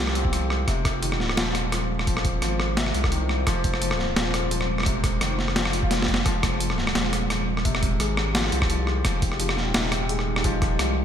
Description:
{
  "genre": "half-time drum and bass",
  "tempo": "172 BPM",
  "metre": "4/4",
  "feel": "swing 54% on 16ths, half-time",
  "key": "F minor",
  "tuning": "A4 = 440 Hz",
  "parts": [
    { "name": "deep dark ambient pad", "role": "sustained chords", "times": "0.0-11.0 s", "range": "Ab3 to C5", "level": "-30 LUFS", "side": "right 1 dB", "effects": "chorus, built-in reverb, vintage 12-bit sampler grit, sidechain pumping" },
    { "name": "felt-muted upright piano", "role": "arpeggios", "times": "0.0-11.0 s", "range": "C3 to C4", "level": "-31 LUFS", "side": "left 5 dB", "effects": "digital delay" },
    { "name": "saturated sub bass", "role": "bass", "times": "0.0-11.0 s", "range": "Eb1 to C2", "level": "-27 LUFS", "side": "equal", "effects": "none" },
    { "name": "boom bap sampler-style drum kit", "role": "drums", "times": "0.1-10.9 s", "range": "hi-hat, rim click, snare drum", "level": "-25 LUFS", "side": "equal", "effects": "none" },
    { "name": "electronic kick drum", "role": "drums", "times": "0.2-10.7 s", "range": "none", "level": "-26 LUFS", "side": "equal", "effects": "none" },
    { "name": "swell", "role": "sound effects", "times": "5.7-6.3 s", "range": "none", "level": "-35 LUFS", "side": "left 1 dB", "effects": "none" }
  ],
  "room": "moderate lush hall reverb, RT60 2.0 s",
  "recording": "bright 1980s-style digital production",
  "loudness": "-21 LUFS",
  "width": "side -9 dB against mid",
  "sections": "0.0-11.0 A section",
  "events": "swell 5.7-6.3; drum fill 5.9-6.3",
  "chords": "0.0 Fmadd9",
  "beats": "0.33 | 0.68 1.03 1.38 1.72 | 2.07 2.42 2.77 3.12 | 3.47 3.82 4.17 4.51 | 4.86 5.21 5.56 5.91 | 6.26 6.61 6.96 7.30 | 7.65 8.00 8.35 8.70 | 9.05 9.40 9.75 10.10 | 10.45 10.79"
}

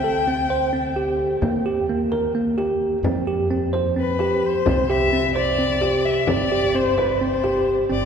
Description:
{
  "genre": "contemporary instrumental, chamber music in an uneven meter",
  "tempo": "259 BPM (eighths)",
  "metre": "7/8",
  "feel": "straight",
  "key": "unclear",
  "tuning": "A4 = 440 Hz",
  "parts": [
    { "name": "warm violin", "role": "melody", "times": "0.0-1.1, 4.0-8.1 s", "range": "B4 to G5", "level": "-24 LUFS", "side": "left 6 dB", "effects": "none" },
    { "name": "bell-like tine electric piano", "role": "arpeggios", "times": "0.0-8.1 s", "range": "Bb3 to C5", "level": "-21 LUFS", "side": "right 2 dB", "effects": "none" },
    { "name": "upright bass", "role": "bass", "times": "0.0-8.1 s", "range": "G1 to F2", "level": "-28 LUFS", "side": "right 1 dB", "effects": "none" },
    { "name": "frame drum", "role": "percussion", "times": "1.4-7.8 s", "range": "none", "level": "-30 LUFS", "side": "left 3 dB", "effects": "none" }
  ],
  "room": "wet cathedral reverb, RT60 6.3 s",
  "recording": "recorded in a church or concert hall",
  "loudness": "-18 LUFS",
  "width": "side -7 dB against mid",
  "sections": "0.0-7.9 A section",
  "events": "none",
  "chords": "0.0 D5; 1.4 Eb; 3.0 Fsus2; 4.7 Cadd9; 6.3 C5/G",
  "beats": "0.03 0.26 0.49 0.73 0.96 1.19 | 1.42 1.65 1.88 2.12 2.35 2.58 2.81 | 3.04 3.27 3.50 3.73 3.97 4.20 4.43 | 4.66 4.89 5.12 5.36 5.59 5.82 6.05 | 6.28 6.51 6.75 6.98 7.21 7.44 7.67 | 7.90"
}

